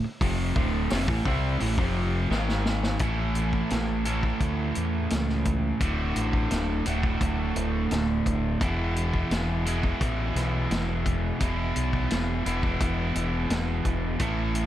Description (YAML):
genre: classic rock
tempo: 86 BPM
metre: 4/4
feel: straight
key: unclear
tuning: A4 = 445 Hz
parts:
  - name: distorted electric guitar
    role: riff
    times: 0.0-14.7 s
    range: D2 to A4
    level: -28 LUFS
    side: right 1 dB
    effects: distortion
  - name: growling fingered electric bass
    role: bass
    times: 0.0-14.7 s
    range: D1 to E2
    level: -28 LUFS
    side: equal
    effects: overdrive
  - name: vintage drum kit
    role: drums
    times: 0.2-14.7 s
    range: hi-hat, kick drum, snare drum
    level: -30 LUFS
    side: equal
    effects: none
room: small room ambience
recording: none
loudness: -24 LUFS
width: side -12 dB against mid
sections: 0.0-3.0 A section; 3.0-14.7 B section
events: drum fill 2.3-3.0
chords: 0.0 D5; 2.3 G#5; 3.0 A; 5.8 D; 8.6 E